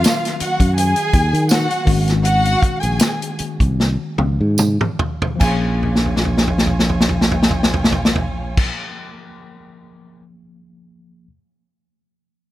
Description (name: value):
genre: lush 1970s-style soul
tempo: 71-84 BPM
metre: 4/4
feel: swing 54% on 16ths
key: Bb minor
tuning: A4 = 439 Hz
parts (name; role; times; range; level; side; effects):
- warm studio violin section; second line; 0.0-8.7 s; F4 to Ab5; -22 LUFS; equal; none
- tine electric piano; accompaniment; 0.0-11.3 s; Eb3 to Ab4; -26 LUFS; left 2 dB; medium stereo tremolo
- fingered electric bass; bass; 0.0-8.7 s; Ab1 to Eb3; -19 LUFS; equal; none
- warm soul drum kit; drums; 0.0-10.2 s; crash cymbal, hi-hat, kick drum, snare drum, toms; -18 LUFS; equal; none
- tambourine; percussion; 0.0-8.7 s; none; -26 LUFS; right 7 dB; none
room: light reverb, studio ambience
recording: none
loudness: -15 LUFS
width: side -15 dB against mid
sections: 0.0-5.4 A section; 5.4-8.8 B section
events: slowing down 0.0-5.4; drum fill 3.8-5.4, 5.8-8.6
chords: 0.0 Ebm9; 1.9 Ab7sus4; 5.4 Bbm7